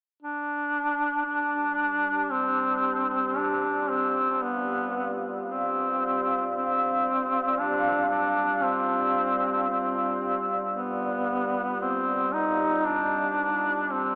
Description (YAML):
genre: dark ambient drone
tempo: 57 BPM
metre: 4/4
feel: straight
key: unclear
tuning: A4 = 440 Hz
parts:
  - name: clear duduk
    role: melody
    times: 0.2-14.2 s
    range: B3 to Eb4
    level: -27 LUFS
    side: equal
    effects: diffuse ambient delay
  - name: deep dark ambient pad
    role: sustained chords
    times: 1.2-14.2 s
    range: G4 to F5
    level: -33 LUFS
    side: equal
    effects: chorus, built-in reverb
room: wet cathedral reverb, RT60 6.0 s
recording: small speaker sound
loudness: -26 LUFS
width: mono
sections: 0.2-14.2 A section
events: none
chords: 0.2 Csus2